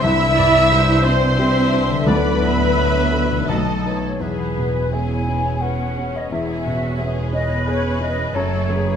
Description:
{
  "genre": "cinematic",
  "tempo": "87 BPM",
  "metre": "3/4",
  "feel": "rubato",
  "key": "E major from 4.2 s",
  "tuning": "A4 = 439 Hz",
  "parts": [
    { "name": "muted symphonic violin section", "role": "melody", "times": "0.0-9.0 s", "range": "B4 to E6", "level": "-28 LUFS", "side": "equal", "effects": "none" },
    { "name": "mellow flute section", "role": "second line", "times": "0.0-9.0 s", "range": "A4 to G#5", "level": "-24 LUFS", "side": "left 2 dB", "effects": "none" },
    { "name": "muted symphonic violin section", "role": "second line", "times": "0.0-9.0 s", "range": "A3 to E5", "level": "-26 LUFS", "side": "left 2 dB", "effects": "none" },
    { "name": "warm oboe", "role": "second line", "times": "0.0-4.2 s", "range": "A4 to E5", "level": "-27 LUFS", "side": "right 3 dB", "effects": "none" },
    { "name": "dark baby grand piano", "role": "accompaniment", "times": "0.0-9.0 s", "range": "B1 to B4", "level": "-26 LUFS", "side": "left 1 dB", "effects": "none" },
    { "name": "muted symphonic viola section", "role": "accompaniment", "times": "0.0-9.0 s", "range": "C#4 to E5", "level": "-28 LUFS", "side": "equal", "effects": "none" },
    { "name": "warm French horn section", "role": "sustained chords", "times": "0.0-3.9 s", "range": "E3 to D#4", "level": "-27 LUFS", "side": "left 2 dB", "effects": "none" },
    { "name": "concert harp", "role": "arpeggios", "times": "0.0-9.0 s", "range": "E2 to B5", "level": "-27 LUFS", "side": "left 7 dB", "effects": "none" },
    { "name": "muted symphonic cello section", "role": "bass", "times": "0.0-9.0 s", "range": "E2 to E4", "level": "-25 LUFS", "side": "right 3 dB", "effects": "none" },
    { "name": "muted symphonic double bass section", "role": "bass", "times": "0.0-9.0 s", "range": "E1 to D2", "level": "-23 LUFS", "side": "right 2 dB", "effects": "none" },
    { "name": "timpani", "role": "percussion", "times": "2.1-3.1 s", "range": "D3", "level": "-23 LUFS", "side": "right 1 dB", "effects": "none" }
  ],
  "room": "moderate scoring stage reverb, RT60 1.6 s",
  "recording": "none",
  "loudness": "-16 LUFS",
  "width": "side -8 dB against mid",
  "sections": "0.0-4.2 A section; 4.2-9.0 B section",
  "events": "none",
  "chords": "0.0 Cadd9; 2.1 D; 3.5 B7; 4.2 E6; 8.3 F#madd9"
}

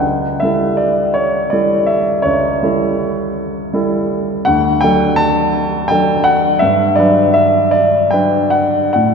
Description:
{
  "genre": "classical, romantic nocturne for solo piano",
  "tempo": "46-57 BPM (dotted quarters)",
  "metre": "12/8",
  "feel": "rubato",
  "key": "unclear",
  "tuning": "A4 = 445 Hz",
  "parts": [
    { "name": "warm grand piano", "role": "solo", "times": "0.0-9.1 s", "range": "C#2 to A5", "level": "-12 LUFS", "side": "equal", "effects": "none" }
  ],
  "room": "wet church reverb, RT60 3.4 s",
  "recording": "minimal, uncompressed stereo recording",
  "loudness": "-12 LUFS",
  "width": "side -5 dB against mid",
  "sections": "0.0-9.1 A section",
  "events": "none",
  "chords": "0.0 A7/C#; 4.5 D; 6.6 Gmaj7"
}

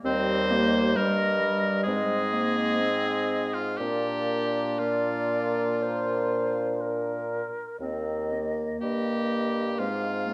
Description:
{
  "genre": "classical, slow romantic movement for wind quintet",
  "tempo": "58-67 BPM",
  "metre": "4/4",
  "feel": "rubato",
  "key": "Eb major",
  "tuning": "A4 = 439 Hz",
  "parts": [
    { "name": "warm clarinet", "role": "accompaniment", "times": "0.0-10.3 s", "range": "G3 to D4", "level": "-34 LUFS", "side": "equal", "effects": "none" },
    { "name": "clear bassoon", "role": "bass", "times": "0.0-10.3 s", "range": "Eb2 to Bb2", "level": "-32 LUFS", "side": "equal", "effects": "none" },
    { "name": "mellow silver concert flute", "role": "melody", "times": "0.1-10.3 s", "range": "Bb4 to F5", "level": "-35 LUFS", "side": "equal", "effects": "none" },
    { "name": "bright oboe", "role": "second line", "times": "0.1-10.3 s", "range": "F4 to C5", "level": "-32 LUFS", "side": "equal", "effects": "none" },
    { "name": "warm French horn", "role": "accompaniment", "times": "0.1-10.3 s", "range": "G3 to C4", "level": "-35 LUFS", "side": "equal", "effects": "none" }
  ],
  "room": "wet recital hall reverb, RT60 1.3 s",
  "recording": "dark, warm production",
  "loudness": "-27 LUFS",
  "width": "mono",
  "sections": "0.0-10.3 A section",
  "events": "none",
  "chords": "0.0 Eb; 1.9 Ab; 3.8 Bb; 7.8 Eb; 9.8 Fm/Ab"
}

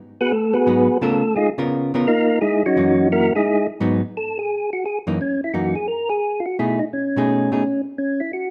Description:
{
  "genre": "jazz",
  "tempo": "172 BPM",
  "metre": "4/4",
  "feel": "swing 65% on 8ths",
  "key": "F# mixolydian",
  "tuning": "A4 = 439 Hz",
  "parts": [
    { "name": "percussive tonewheel organ", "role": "melody", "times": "0.2-8.5 s", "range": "F#3 to B4", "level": "-21 LUFS", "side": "equal", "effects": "slow rotary speaker" },
    { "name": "hollow-body jazz guitar", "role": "accompaniment", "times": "0.7-7.6 s", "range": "F#2 to A#4", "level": "-24 LUFS", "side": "equal", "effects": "none" }
  ],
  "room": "moderate large studio reverb, RT60 1.1 s",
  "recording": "dark, warm production",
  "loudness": "-20 LUFS",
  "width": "mono",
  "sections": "0.0-5.2 A section; 5.2-8.5 B section",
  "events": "tonewheel organ solo 0.0-5.2",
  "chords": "0.0 G#m7; 1.0 C#13; 2.4 F#13; 3.8 G#m7; 4.5 F#13; 6.6 B13; 8.0 F#7(no3)"
}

